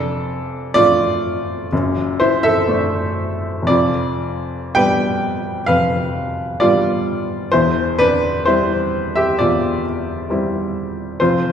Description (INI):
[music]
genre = classical, romantic character piece for solo piano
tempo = 53-67 BPM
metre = 4/4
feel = rubato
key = C major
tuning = A4 = 438 Hz
[part]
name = clear upright piano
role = solo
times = 0.0-11.5 s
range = E1 to G5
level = -16 LUFS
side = equal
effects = none
[sound]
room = wet recital hall reverb, RT60 1.6 s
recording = heard from further back in the room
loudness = -16 LUFS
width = side -8 dB against mid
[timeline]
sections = 0.0-11.5 A section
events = none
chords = 0.0 Dm/F; 1.7 D7/F#; 3.7 G7/F; 7.5 C/E